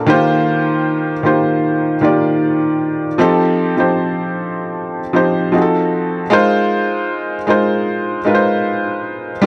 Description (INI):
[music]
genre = R&B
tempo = 77 BPM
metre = 4/4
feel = straight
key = unclear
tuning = A4 = 440 Hz
[part]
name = felt-muted upright piano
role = solo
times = 0.0-9.5 s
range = Eb3 to Bb5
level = -16 LUFS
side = equal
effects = none
[sound]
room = light reverb, studio ambience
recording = dry, gritty hardware recording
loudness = -16 LUFS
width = mono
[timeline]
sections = 0.0-6.3 A section; 6.3-9.5 B section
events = none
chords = 0.1 Eb69; 3.2 F9; 5.5 F7b9; 6.3 Ab69